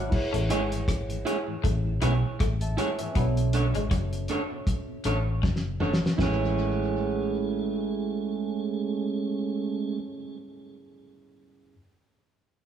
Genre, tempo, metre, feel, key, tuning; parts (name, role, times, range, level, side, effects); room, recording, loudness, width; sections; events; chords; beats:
lovers rock reggae; 79 BPM; 4/4; swing 56% on 16ths; A major; A4 = 436 Hz
mellow tonewheel organ; accompaniment; 0.0-10.0 s; A2 to C#4; -32 LUFS; right 5 dB; slow rotary speaker, tape echo
tine electric piano; accompaniment; 0.0-11.7 s; C#4 to B5; -37 LUFS; equal
vintage muted fingered electric bass; bass; 0.0-10.1 s; F#1 to B1; -28 LUFS; equal
cloth-damped thuddy drum kit; drums; 0.1-6.4 s; crash cymbal, hi-hat, kick drum, rim click, snare drum, toms; -28 LUFS; equal; tape echo
electric guitar through a small old amp; riff; 0.3-5.7 s; F#3 to B3; -34 LUFS; left 5 dB
electric guitar through a small old amp; stabs; 0.5-10.2 s; D4 to C#5; -32 LUFS; right 3 dB; spring reverb
moderate stone room reverb, RT60 1.3 s; band playing live in one room, studio reverb; -25 LUFS; side -9 dB against mid
0.1-6.2 A section; 6.2-9.2 B section
drum fill 5.4-6.2
0.1 Amaj7; 3.2 Bm9; 6.2 Amaj7
| 0.11 0.87 1.63 2.39 | 3.15 3.91 4.67 5.43 | 6.19 6.95 7.71 8.47